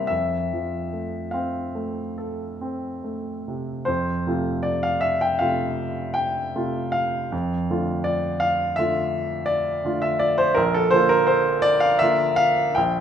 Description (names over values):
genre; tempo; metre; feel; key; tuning
classical, romantic nocturne for solo piano; 46-57 BPM (dotted quarters); 9/8; rubato; F major; A4 = 440 Hz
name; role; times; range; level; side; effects
warm grand piano; solo; 0.0-13.0 s; Bb1 to G5; -20 LUFS; equal; none
room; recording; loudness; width
moderate recital hall reverb, RT60 1.6 s; minimal, uncompressed stereo recording; -20 LUFS; side -8 dB against mid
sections
0.0-3.9 A section; 3.9-13.0 A section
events
none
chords
0.1 F; 7.3 Dm/F; 10.6 Bb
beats
| 0.11 1.34 2.61 | 3.88 5.04 6.17 | 7.32 8.42 9.48 | 10.57 11.65 12.78